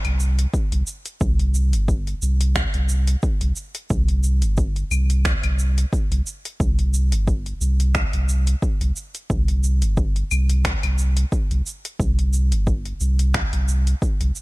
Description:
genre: organic downtempo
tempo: 89 BPM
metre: 4/4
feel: swing 55% on 16ths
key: unclear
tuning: A4 = 440 Hz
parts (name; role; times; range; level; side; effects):
- warm sub bass; bass; 0.0-14.3 s; G1 to C2; -19 LUFS; equal; none
- afro-pop drum kit; drums; 0.0-14.4 s; cabasa, claves, finger snaps, hi-hat; -28 LUFS; equal; none
- electronic kick drum; drums; 0.5-14.2 s; none; -23 LUFS; equal; overdrive
room: little or no reverb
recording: none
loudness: -19 LUFS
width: side -22 dB against mid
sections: 0.0-14.4 A section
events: none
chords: none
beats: 0.54 | 1.21 1.89 2.56 3.23 | 3.91 4.58 5.26 5.93 | 6.60 7.28 7.95 8.63 | 9.30 9.97 10.65 11.32 | 12.00 12.67 13.35 14.02

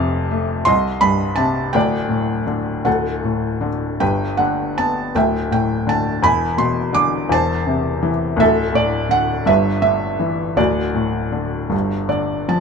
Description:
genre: classical, lyrical solo piano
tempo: 54 BPM (dotted quarters)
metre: 6/8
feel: uneven beats, rubato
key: unclear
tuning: A4 = 441 Hz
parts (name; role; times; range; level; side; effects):
- felt-muted upright piano; solo; 0.0-12.6 s; D1 to D6; -16 LUFS; equal; none
room: light reverb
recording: minimal, uncompressed stereo recording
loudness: -16 LUFS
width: side -5 dB against mid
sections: 0.0-12.6 A section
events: felt piano fill 11.7-12.6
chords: 0.0 F; 0.7 Cm; 1.8 Dsus4; 4.0 G; 5.2 Dsus2; 6.2 E7; 7.3 Am/E; 8.4 D5; 9.5 G6; 10.6 D; 11.7 G5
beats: 0.68 | 1.76 2.87 | 4.01 5.15 | 6.24 7.32 | 8.40 9.48 | 10.59 11.73

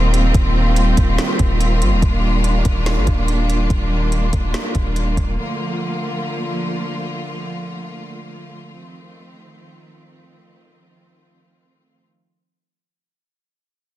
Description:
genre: hip hop, atmospheric cloud-rap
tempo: 143 BPM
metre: 4/4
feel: half-time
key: Eb lydian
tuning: A4 = 440 Hz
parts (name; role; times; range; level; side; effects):
- rich symphonic string section; sustained chords; 0.0-12.1 s; D3 to F4; -22 LUFS; right 1 dB; sidechain pumping
- long sustained 808-style bass; bass; 0.0-5.4 s; Eb1 to G1; -18 LUFS; equal; none
- downlifter; sound effects; 0.0-2.0 s; none; barely audible; none; none
- smooth R&B drum kit; drums; 0.1-5.3 s; hi-hat, kick drum, snare drum; -21 LUFS; equal; none
room: digital ambience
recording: dense, heavily limited modern master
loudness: -16 LUFS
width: side -14 dB against mid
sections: 0.0-12.1 A section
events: fade-out 0.0-12.1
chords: 0.0 Eb69; 5.4 Bbmaj7; 8.7 F7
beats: | 0.34 0.77 1.19 1.60 | 2.02 2.44 2.86 3.28 | 3.70 4.12 4.54 4.96 | 5.38 5.80 6.22 6.64 | 7.06 7.48 7.90 8.32 | 8.74 9.16 9.58 10.00 | 10.41 10.84 11.25 11.67

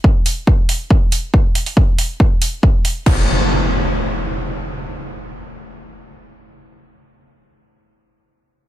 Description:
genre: driving peak-time techno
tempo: 139 BPM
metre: 4/4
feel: straight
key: none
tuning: none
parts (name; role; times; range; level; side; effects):
- electronic kick drum; drums; 0.0-3.2 s; none; -13 LUFS; equal; none
- techno drum kit; drums; 0.3-3.2 s; crash cymbal, hi-hat; -22 LUFS; right 1 dB; sidechain pumping on hats, sidechain pumping on cymbals
- impact; sound effects; 3.1-6.8 s; none; -19 LUFS; equal; none
room: light reverb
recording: none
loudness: -14 LUFS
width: side -13 dB against mid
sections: 0.0-3.1 A section; 3.1-6.5 B section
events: none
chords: none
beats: 0.04 0.47 0.91 | 1.34 1.77 2.20 2.63 | 3.06 3.50 3.93 4.36 | 4.79 5.22 5.65 6.08

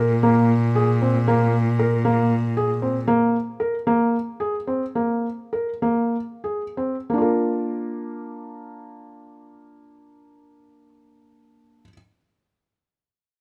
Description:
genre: contemporary instrumental, chamber music in an uneven meter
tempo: 182-233 BPM (eighths)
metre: 7/8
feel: straight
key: Bb mixolydian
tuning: A4 = 440 Hz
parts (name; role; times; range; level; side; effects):
- felt-muted upright piano; arpeggios; 0.0-11.9 s; Bb3 to Bb4; -24 LUFS; equal; none
- warm cello; bass; 0.0-3.0 s; Bb2; -23 LUFS; equal; none
room: moderate recital hall reverb, RT60 1.3 s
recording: close, detailed microphones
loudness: -22 LUFS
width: mono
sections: 0.0-7.1 A section; 7.1-11.7 B section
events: slowing down 3.1-7.1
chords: 0.0 N.C.; 7.1 Bb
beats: 0.23 0.50 0.76 1.02 | 1.28 1.53 1.79 2.05 2.31 2.57 2.82 | 3.08 3.34 3.60 3.87 4.13 4.40 4.68 | 4.95 5.24 5.53 5.82 6.13 6.44 6.76 | 7.09 7.42 7.75 8.08 8.41 8.73 9.06 | 9.38 9.71 10.04 10.36 10.69 11.02 11.34

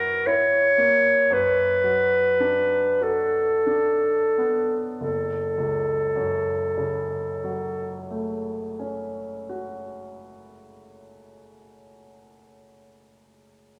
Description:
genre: classical, romantic duo for clarinet and grand piano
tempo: 27-39 BPM (dotted quarters)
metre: 12/8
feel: rubato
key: F# minor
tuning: A4 = 443 Hz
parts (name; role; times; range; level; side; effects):
- warm clarinet; melody; 0.0-8.1 s; A4 to C#5; -23 LUFS; equal; none
- clear concert grand piano; accompaniment; 0.0-13.8 s; F#1 to F#4; -34 LUFS; equal; none
room: wet recital hall reverb, RT60 1.7 s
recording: none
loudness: -23 LUFS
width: mono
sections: 0.0-5.0 A section; 5.0-11.7 B section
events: slowing down 0.0-5.0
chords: 0.0 F#7; 1.3 Bm/F#; 5.0 F#m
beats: 1.31 3.04 | 5.03 6.68 8.40 10.06

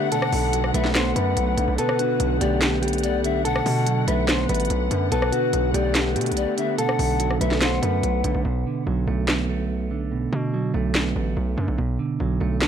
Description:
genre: hip hop, trap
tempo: 144 BPM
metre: 4/4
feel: half-time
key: B minor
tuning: A4 = 440 Hz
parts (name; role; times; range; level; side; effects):
- mellow electric guitar; melody; 0.0-8.4 s; F#4 to C5; -26 LUFS; left 2 dB; low-pass filter, ping-pong delay
- polished pan flute; second line; 0.0-8.4 s; B4 to F#5; -28 LUFS; left 9 dB; ping-pong delay
- clean electric guitar; accompaniment; 0.0-12.7 s; B2 to B3; -26 LUFS; right 6 dB; low-pass filter
- dark symphonic string section; sustained chords; 0.0-8.4 s; D3 to F#5; -31 LUFS; left 2 dB; none
- trap drum kit; drums; 0.1-12.7 s; handclaps, hi-hat, rim click, snare drum; -25 LUFS; equal; none
- distorted 808-style bass; bass; 0.3-12.7 s; A1 to B2; -25 LUFS; equal; distortion
room: light reverb, digital ambience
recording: none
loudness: -20 LUFS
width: side -8 dB against mid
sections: 0.0-8.5 A section; 8.5-12.7 B section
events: kick muted 1.8-2.2; break 8.5-12.7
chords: 0.0 Bm7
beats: | 0.12 0.53 0.95 1.37 | 1.78 2.20 2.62 3.03 | 3.45 3.87 4.28 4.70 | 5.12 5.53 5.95 6.37 | 6.78 7.20 7.62 8.03 | 8.45 8.87 9.28 9.70 | 10.12 10.53 10.95 11.37 | 11.78 12.20 12.62

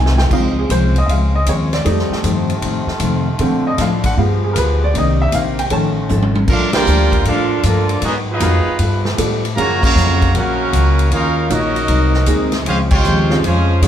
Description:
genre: jazz, big band swing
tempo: 156 BPM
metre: 4/4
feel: swing 66% on 8ths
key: unclear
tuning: A4 = 439 Hz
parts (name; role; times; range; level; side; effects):
- clear upright piano; accompaniment; 0.0-13.9 s; D3 to A5; -20 LUFS; right 1 dB; none
- picked steel-string acoustic guitar; accompaniment; 0.0-13.9 s; F2 to A4; -22 LUFS; left 4 dB; none
- muted trombone section; sustained chords; 0.0-13.9 s; C3 to G4; -28 LUFS; left 2 dB; none
- upright bass; bass; 0.0-13.9 s; G#1 to C3; -17 LUFS; equal; none
- swinging big-band drum kit; drums; 0.1-13.9 s; crash cymbal, hi-hat, kick drum, ride cymbal, snare drum, toms; -22 LUFS; equal; none
- bright trumpet section; melody; 6.5-13.9 s; Ab3 to Bb5; -19 LUFS; right 1 dB; none
- clear trombone section; second line; 6.5-13.9 s; C3 to A4; -21 LUFS; right 3 dB; none
room: wet club reverb, RT60 0.6 s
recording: heard from further back in the room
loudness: -13 LUFS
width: side -10 dB against mid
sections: 0.0-6.5 A section; 6.5-13.9 B section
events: drum fill 0.0-0.3, 6.1-6.5; upright piano solo 0.0-6.5; band accent 6.7, 9.8, 12.8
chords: 0.3 Dbmaj7; 1.9 F7; 3.4 Bbmaj7; 4.2 G7b9; 4.9 Cm7; 5.7 F7alt; 6.5 Bbmaj7; 8.0 Abm7; 8.8 G9; 9.6 Gbmaj7; 11.1 Ebm7; 11.9 Ab7; 12.7 Dbmaj7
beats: | 0.31 0.69 1.08 1.47 | 1.85 2.24 2.62 3.01 | 3.39 3.78 4.17 4.55 | 4.94 5.32 5.71 6.09 | 6.48 6.87 7.25 7.64 | 8.02 8.41 8.79 9.18 | 9.57 9.95 10.34 10.72 | 11.11 11.50 11.88 12.27 | 12.66 13.04 13.43 13.82

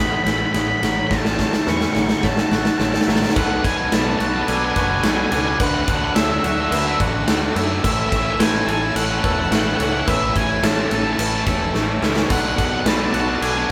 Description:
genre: post-rock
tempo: 107 BPM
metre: 4/4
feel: straight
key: A major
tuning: A4 = 440 Hz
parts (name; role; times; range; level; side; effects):
- octave-fuzz lead guitar; melody; 0.0-13.7 s; E5 to C#6; -26 LUFS; equal; distortion
- clear studio string section; sustained chords; 0.0-13.7 s; D3 to E6; -36 LUFS; equal; none
- felt-muted upright piano; arpeggios; 0.0-13.7 s; A4 to E5; -33 LUFS; equal; none
- twangy electric guitar; arpeggios; 0.0-13.7 s; A2 to A4; -30 LUFS; equal; none
- thick fuzz guitar; riff; 0.0-13.7 s; A2 to E4; -31 LUFS; equal; none
- thick fuzz guitar; riff; 0.0-13.7 s; A2 to F#4; -29 LUFS; equal; distortion
- fuzz fingered electric bass; bass; 0.0-13.6 s; E1 to F#2; -29 LUFS; equal; overdrive
- huge arena drum kit; drums; 0.3-13.6 s; crash cymbal, kick drum, ride cymbal, snare drum, splash cymbal; -23 LUFS; equal; none
room: moderate large studio reverb, RT60 1.3 s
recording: band playing live in one room, faint mains hum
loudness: -19 LUFS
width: mono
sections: 0.0-3.4 A section; 3.4-13.7 B section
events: build-up 0.0-3.4; drum fill 0.0-3.4, 11.7-12.3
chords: 0.0 A69; 1.1 Dmaj7/A; 3.4 Bm7; 5.6 Dadd9; 7.8 A; 12.3 Bm7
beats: 0.55 | 1.11 1.67 2.23 2.79 | 3.36 3.92 4.48 5.04 | 5.60 6.16 6.72 7.28 | 7.83 8.39 8.95 9.51 | 10.07 10.63 11.19 11.74 | 12.30 12.86 13.42

